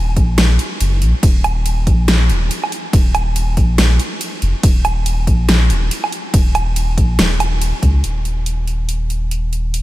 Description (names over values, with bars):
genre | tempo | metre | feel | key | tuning
deep dubstep | 141 BPM | 4/4 | swing 59% on 16ths, half-time | Eb minor | A4 = 440 Hz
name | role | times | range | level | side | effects
soft dub sub bass | bass | 0.0-9.8 s | Eb1 to Db2 | -15 LUFS | equal | none
dubstep drum kit | drums | 0.2-9.8 s | hi-hat, ride cymbal, snare drum, woodblock | -19 LUFS | right 1 dB | overdrive
electronic kick drum | drums | 0.2-7.9 s | none | -14 LUFS | equal | none
room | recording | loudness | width
little or no reverb | none | -13 LUFS | side -16 dB against mid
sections
0.0-8.0 A section; 8.0-9.8 B section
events
drop 0.0-8.0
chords
none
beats
0.38 0.80 | 1.23 1.66 2.08 2.51 | 2.93 3.36 3.78 4.21 | 4.63 5.06 5.49 5.91 | 6.34 6.76 7.19 7.61 | 8.04 8.46 8.89 9.31 | 9.74